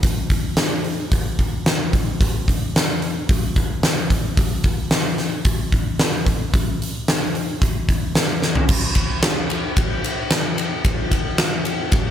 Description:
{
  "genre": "rock",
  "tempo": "111 BPM",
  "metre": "4/4",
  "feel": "straight",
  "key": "none",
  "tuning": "none",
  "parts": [
    { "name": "huge arena drum kit", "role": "drums", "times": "0.0-12.0 s", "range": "crash cymbal, hi-hat, kick drum, ride cymbal, snare drum, toms", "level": "-18 LUFS", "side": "equal", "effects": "none" }
  ],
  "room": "light reverb",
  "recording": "faint mains hum",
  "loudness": "-18 LUFS",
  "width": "side -10 dB against mid",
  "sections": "0.0-8.7 A section; 8.7-12.1 B section",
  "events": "drum fill 8.4",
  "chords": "none"
}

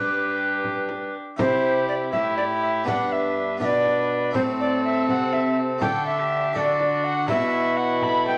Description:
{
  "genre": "classical, renaissance-style consort dance",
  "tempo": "81 BPM (dotted quarters)",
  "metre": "6/8",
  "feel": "straight",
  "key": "G major",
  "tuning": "A4 = 439 Hz",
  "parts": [
    { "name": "tenor recorder", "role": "melody", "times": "0.0-8.4 s", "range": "B4 to B5", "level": "-26 LUFS", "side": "equal", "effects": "none" },
    { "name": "dark violin", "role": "second line", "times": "0.0-8.4 s", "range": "F#4 to B4", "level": "-33 LUFS", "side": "equal", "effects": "none" },
    { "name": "harpsichord", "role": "accompaniment", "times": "0.0-8.4 s", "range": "G2 to C5", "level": "-35 LUFS", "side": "equal", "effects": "none" },
    { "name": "rich viola", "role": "accompaniment", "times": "0.0-8.4 s", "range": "C4 to E4", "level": "-29 LUFS", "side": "equal", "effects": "none" },
    { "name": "breathy trombone", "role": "bass", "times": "0.0-8.4 s", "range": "G2 to D3", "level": "-33 LUFS", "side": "equal", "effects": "none" },
    { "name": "frame drum", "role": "percussion", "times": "0.6-8.4 s", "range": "none", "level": "-34 LUFS", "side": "equal", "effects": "none" }
  ],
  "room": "wet stone room reverb, RT60 0.9 s",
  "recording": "none",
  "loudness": "-23 LUFS",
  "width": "mono",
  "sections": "0.0-1.4 A section; 1.4-8.4 A section",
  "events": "none",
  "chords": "0.0 G; 1.4 C; 2.9 G; 4.3 Am; 5.8 Dsus4; 7.3 Bm"
}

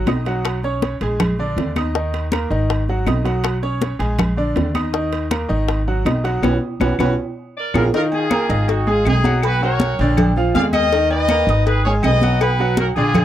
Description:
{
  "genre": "latin, salsa",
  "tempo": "161 BPM",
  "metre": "4/4",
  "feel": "straight",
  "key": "Eb minor",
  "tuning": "A4 = 440 Hz",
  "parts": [
    { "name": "bright grand piano", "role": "accompaniment", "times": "0.0-13.2 s", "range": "D3 to Eb6", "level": "-21 LUFS", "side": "right 1 dB", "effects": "none" },
    { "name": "upright bass", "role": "bass", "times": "0.0-13.2 s", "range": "Ab1 to Eb2", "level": "-20 LUFS", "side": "equal", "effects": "none" },
    { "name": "bongos and cowbell", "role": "percussion", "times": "0.1-13.2 s", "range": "none", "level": "-25 LUFS", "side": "left 11 dB", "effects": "none" },
    { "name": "claves", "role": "percussion", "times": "0.1-13.2 s", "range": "none", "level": "-29 LUFS", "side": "left 11 dB", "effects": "none" },
    { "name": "congas", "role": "percussion", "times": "0.1-13.2 s", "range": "none", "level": "-22 LUFS", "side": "left 1 dB", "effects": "none" },
    { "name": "timbales and agogo bells", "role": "percussion", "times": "0.1-13.2 s", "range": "none", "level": "-26 LUFS", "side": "right 6 dB", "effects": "none" },
    { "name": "warm horn section", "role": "melody", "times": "7.6-13.2 s", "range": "Eb4 to F5", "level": "-20 LUFS", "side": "left 2 dB", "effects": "none" }
  ],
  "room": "light reverb",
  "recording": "dry, close 1970s-style studio recording",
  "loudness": "-16 LUFS",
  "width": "side -12 dB against mid",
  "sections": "0.0-7.9 A section; 7.9-13.2 B section",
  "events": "band accent 6.4-7.9; drum fill 7.2-7.9",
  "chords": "0.5 Bsus2; 1.2 Bb7; 1.9 Eb5; 2.7 Abm7; 3.4 Bsus2; 4.2 Bb7; 4.9 Eb5; 5.7 Abm7; 6.4 Bsus2; 7.2 Bb5; 7.9 Ebsus2; 8.7 Abm7; 9.4 Bsus2; 10.2 Bb7; 10.9 Eb5; 11.7 Abm7; 12.4 B5"
}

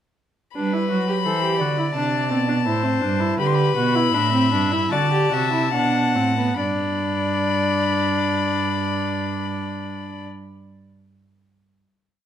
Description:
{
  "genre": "classical, baroque-style fugue for string quartet",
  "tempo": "68-87 BPM",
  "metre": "4/4",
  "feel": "straight",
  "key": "G major",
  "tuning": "A4 = 439 Hz",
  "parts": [
    { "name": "rich violin", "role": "melody", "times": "0.5-10.2 s", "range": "A5 to C6", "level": "-25 LUFS", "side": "left 9 dB", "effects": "none" },
    { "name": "rich violin", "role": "second line", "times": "0.6-10.3 s", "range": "B4 to F#5", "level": "-26 LUFS", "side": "left 4 dB", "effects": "none" },
    { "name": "rich viola", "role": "accompaniment", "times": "0.6-10.3 s", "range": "B3 to A4", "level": "-24 LUFS", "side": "right 2 dB", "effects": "none" },
    { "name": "dark cello", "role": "bass", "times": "0.6-10.2 s", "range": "G2 to G3", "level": "-24 LUFS", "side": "right 4 dB", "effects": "none" }
  ],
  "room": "moderate recital hall reverb, RT60 1.5 s",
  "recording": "close, detailed microphones",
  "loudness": "-19 LUFS",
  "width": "side -10 dB against mid",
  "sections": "0.6-6.6 exposition; 6.6-10.1 final chord",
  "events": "slowing down 0.6-8.4",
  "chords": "0.6 G; 2.0 Am; 3.4 G; 4.9 D7; 6.6 G"
}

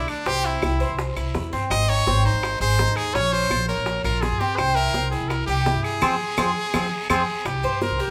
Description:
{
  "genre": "latin, Cuban son and guajira",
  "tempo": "167 BPM",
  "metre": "4/4",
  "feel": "straight",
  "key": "unclear",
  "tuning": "A4 = 442 Hz",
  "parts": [
    { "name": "brilliant trumpet", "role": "melody", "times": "0.0-8.1 s", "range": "D4 to Eb5", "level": "-26 LUFS", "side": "equal", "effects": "none" },
    { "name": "Cuban tres", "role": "arpeggios", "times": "0.0-8.1 s", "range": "C4 to Db5", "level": "-28 LUFS", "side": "equal", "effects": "none" },
    { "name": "upright bass", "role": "bass", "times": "0.0-8.1 s", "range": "Ab1 to G2", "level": "-28 LUFS", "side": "equal", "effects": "none" },
    { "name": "claves", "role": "percussion", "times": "0.1-7.6 s", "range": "none", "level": "-35 LUFS", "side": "equal", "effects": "none" },
    { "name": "guiro", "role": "percussion", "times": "0.1-8.1 s", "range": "none", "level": "-42 LUFS", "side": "equal", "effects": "none" },
    { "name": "maracas", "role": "percussion", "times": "0.1-8.1 s", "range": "none", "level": "-48 LUFS", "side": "equal", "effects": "none" },
    { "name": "bongos", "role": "percussion", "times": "0.3-8.0 s", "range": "none", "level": "-33 LUFS", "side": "equal", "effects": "none" }
  ],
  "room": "moderate large studio reverb, RT60 1.1 s",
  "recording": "band playing live in one room",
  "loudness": "-22 LUFS",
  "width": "mono",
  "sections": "0.0-7.5 A section",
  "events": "band accent 6.0-7.5",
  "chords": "0.3 C; 1.7 Ab; 3.1 Bbm; 4.6 C7; 6.0 Fm; 7.5 C7(no3)"
}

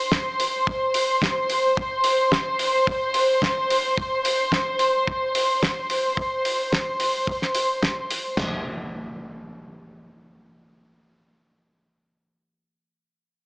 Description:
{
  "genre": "nu-disco, nu disco",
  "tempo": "109 BPM",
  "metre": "4/4",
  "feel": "straight",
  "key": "unclear",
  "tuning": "A4 = 440 Hz",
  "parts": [
    { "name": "warm studio string section", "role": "sustained chords", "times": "0.0-8.4 s", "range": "C5 to C6", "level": "-22 LUFS", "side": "equal", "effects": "sidechain pumping" },
    { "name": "damped 70s drum kit", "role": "drums", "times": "0.1-8.5 s", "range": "china cymbal, kick drum, snare drum", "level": "-28 LUFS", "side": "equal", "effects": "studio reverb" },
    { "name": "damped 70s drum kit", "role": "drums", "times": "0.1-8.2 s", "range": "hi-hat, snare drum", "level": "-25 LUFS", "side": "equal", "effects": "studio reverb" },
    { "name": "impact", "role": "sound effects", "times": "8.4-12.1 s", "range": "none", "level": "-35 LUFS", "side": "equal", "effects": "none" }
  ],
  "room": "light reverb, small room reverb",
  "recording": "dry, gritty hardware recording, small speaker sound",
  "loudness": "-20 LUFS",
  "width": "side -39 dB against mid",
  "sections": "0.0-8.4 A section; 8.4-10.6 B section",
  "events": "none",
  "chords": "none"
}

